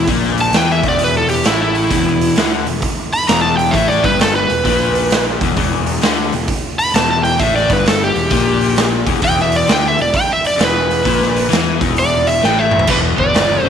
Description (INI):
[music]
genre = blues rock power trio and southern rock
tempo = 131 BPM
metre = 4/4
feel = swing 66% on 8ths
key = E minor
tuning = A4 = 440 Hz
[part]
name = overdriven slide guitar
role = melody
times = 0.0-13.7 s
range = E4 to B5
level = -16 LUFS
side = right 2 dB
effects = none
[part]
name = crunchy overdriven guitar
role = riff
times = 0.0-13.7 s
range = E2 to E3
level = -19 LUFS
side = left 10 dB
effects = none
[part]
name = fuzz fingered electric bass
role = bass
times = 0.0-13.7 s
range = E1 to E2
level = -21 LUFS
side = right 1 dB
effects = overdrive
[part]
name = raw garage drum kit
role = drums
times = 0.1-13.5 s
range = crash cymbal, hi-hat, kick drum, snare drum, toms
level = -18 LUFS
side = right 2 dB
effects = none
[part]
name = lead guitar through a small cranked amp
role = second line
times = 12.9-13.7 s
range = G4 to B4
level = -24 LUFS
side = right 12 dB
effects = overdrive
[sound]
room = moderate echo chamber reverb, RT60 1.8 s, small room ambience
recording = 1960s-style stereo with parts hard left and right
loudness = -12 LUFS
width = side -8 dB against mid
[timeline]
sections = 0.0-12.9 A section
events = electric slide guitar solo 0.0-12.9; drum fill 12.4-12.9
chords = 0.0 Em; 12.9 Em7